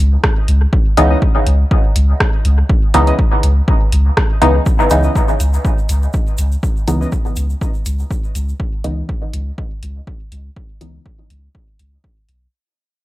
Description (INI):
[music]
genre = dub techno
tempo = 122 BPM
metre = 4/4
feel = swing 53% on 16ths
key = C# minor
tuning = A4 = 441 Hz
[part]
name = soft dub sub bass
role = bass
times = 0.0-12.5 s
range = B1 to C#2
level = -14 LUFS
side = equal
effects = sidechain pumping
[part]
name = deep house drum kit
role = drums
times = 0.2-12.4 s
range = hi-hat, rim click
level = -21 LUFS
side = equal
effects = dub echo
[part]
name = electronic kick drum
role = drums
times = 0.2-12.1 s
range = none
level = -16 LUFS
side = equal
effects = none
[part]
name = filtered dub chord stab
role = stabs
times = 1.0-11.0 s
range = C#3 to D#4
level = -17 LUFS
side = equal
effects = chorus, phaser, sidechain pumping, dub echo
[part]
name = warbly lo-fi synth keys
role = riff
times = 1.1-7.1 s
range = C#4 to D#5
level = -27 LUFS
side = left 2 dB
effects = chorus, sidechain pumping, dub echo
[part]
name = egg shaker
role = percussion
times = 4.7-8.6 s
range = none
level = -34 LUFS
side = right 2 dB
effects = none
[sound]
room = little or no reverb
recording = dry, gritty hardware recording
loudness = -12 LUFS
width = side -16 dB against mid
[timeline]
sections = 0.0-4.7 A section; 4.7-12.5 B section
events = fade-out 4.7-12.5; filter sweep on synth stab 4.7-12.5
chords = 0.0 C#m9